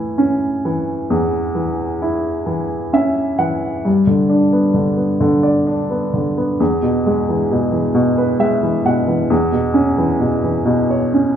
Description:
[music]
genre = folk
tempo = 44 BPM (dotted quarters)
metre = 6/8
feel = straight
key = unclear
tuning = A4 = 440 Hz
[part]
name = warm upright piano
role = solo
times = 0.0-11.4 s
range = E2 to F#5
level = -14 LUFS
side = equal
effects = none
[sound]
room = wet large studio reverb, RT60 1.4 s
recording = band playing live in one room, nothing above 7.9 kHz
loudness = -14 LUFS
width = side -9 dB against mid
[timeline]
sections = 0.0-3.9 A section; 3.9-11.4 B section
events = none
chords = 0.0 A; 3.9 G; 6.6 E; 9.3 C#m7/E

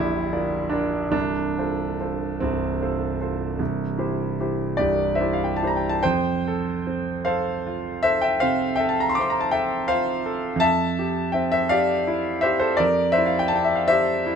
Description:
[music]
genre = classical, romantic nocturne for solo piano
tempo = 47-57 BPM (dotted quarters)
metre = 12/8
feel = rubato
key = F major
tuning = A4 = 440 Hz
[part]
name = clear concert grand piano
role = solo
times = 0.0-14.4 s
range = Bb0 to D6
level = -20 LUFS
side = equal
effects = none
[sound]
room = light reverb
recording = close, detailed microphones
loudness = -20 LUFS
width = side -7 dB against mid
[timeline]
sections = 0.0-6.0 A section; 6.0-14.4 B section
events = none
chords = 0.0 Gm7/Bb; 1.1 F/C; 3.6 C; 6.0 F

